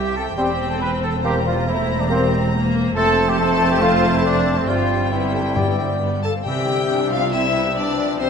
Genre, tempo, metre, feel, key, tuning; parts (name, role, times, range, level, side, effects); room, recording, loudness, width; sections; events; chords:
quick classical-period movement for symphony orchestra; 138 BPM; 4/4; rubato; C major; A4 = 440 Hz
rich chamber violin section; melody; 0.0-8.3 s; C5 to Bb5; -27 LUFS; left 4 dB
warm studio violin section; second line; 0.0-8.3 s; A3 to E5; -28 LUFS; left 5 dB
warm trumpet section; stabs; 0.0-6.0 s; C4 to B4; -23 LUFS; right 2 dB
rich chamber double bass section; bass; 0.0-8.3 s; E1 to C2; -25 LUFS; right 3 dB
warm chamber cello section; bass; 0.0-8.3 s; C2 to C3; -26 LUFS; right 2 dB
mellow hollow flute section; second line; 0.2-8.3 s; G4 to B5; -28 LUFS; left 5 dB
clear oboe; second line; 0.4-8.3 s; C5 to E5; -29 LUFS; right 1 dB
mellow clarinet; second line; 0.4-8.3 s; B3 to A4; -29 LUFS; left 2 dB
rich chamber viola section; accompaniment; 0.4-8.3 s; D3 to D4; -26 LUFS; equal
warm bassoon; accompaniment; 0.4-8.3 s; G3 to Bb3; -28 LUFS; right 1 dB
mellow French horn section; sustained chords; 0.4-8.3 s; B3 to Bb4; -28 LUFS; left 6 dB
timpani; percussion; 5.6-7.1 s; G2 to C3; -28 LUFS; left 2 dB
wet recital hall reverb, RT60 1.8 s; minimal, uncompressed stereo recording; -16 LUFS; side -6 dB against mid
0.0-6.5 A section; 6.5-8.3 B section
0.4 C/E; 1.2 C7/E; 3.0 F; 4.7 C/G; 5.6 G; 6.5 C